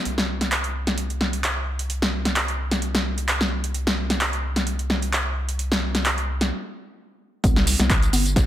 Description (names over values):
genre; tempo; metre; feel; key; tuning
acid house; 130 BPM; 4/4; swing 54% on 16ths; unclear; A4 = 440 Hz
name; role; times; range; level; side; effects
round analog bass; bass; 0.1-8.4 s; G1 to C2; -26 LUFS; equal; sidechain pumping
electro analog drum machine; drums; 0.1-8.5 s; congas, handclaps, hi-hat, snare drum, tambourine; -23 LUFS; equal; overdrive
electronic kick drum; drums; 7.4-8.5 s; none; -20 LUFS; equal; none
room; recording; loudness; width
light reverb; none; -21 LUFS; side -12 dB against mid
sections
0.1-7.4 A section; 7.4-8.5 B section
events
stop 6.5-7.4; drop 7.4-8.5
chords
none